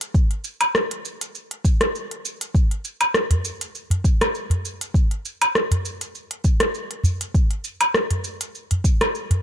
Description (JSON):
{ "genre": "downtempo", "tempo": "100 BPM", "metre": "4/4", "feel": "swing 54% on 16ths", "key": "none", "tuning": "none", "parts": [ { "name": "organic electronic drum kit", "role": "drums", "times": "0.0-9.4 s", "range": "hi-hat, rim click, shaker, woodblock", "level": "-22 LUFS", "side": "equal", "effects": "none" }, { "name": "electronic kick drum", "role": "drums", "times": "0.1-9.0 s", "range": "none", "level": "-17 LUFS", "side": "equal", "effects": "none" }, { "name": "udu", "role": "percussion", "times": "3.3-9.4 s", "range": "none", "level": "-20 LUFS", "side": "equal", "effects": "none" } ], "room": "little or no reverb", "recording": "none", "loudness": "-20 LUFS", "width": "side -9 dB against mid", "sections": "0.0-9.4 A section", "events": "none", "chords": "none" }